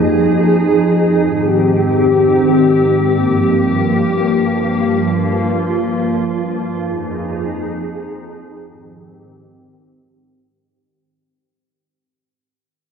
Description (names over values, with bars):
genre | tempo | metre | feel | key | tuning
hip hop | free time | none | none | unclear | A4 = 436 Hz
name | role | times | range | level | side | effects
glassy FM pad | solo | 0.0-10.5 s | F2 to Ab4 | -13 LUFS | equal | ensemble chorus, built-in reverb
room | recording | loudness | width
moderate lush hall reverb, RT60 2.8 s | low-pass filter | -13 LUFS | side -6 dB against mid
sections
0.0-3.1 A section; 3.1-10.5 B section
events
fade-out 3.1-10.5; filter sweep 3.1-10.5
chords
0.0 Fm7; 1.2 Abmaj7; 3.1 Gm7; 6.8 Fm7; 8.7 Abmaj7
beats
free time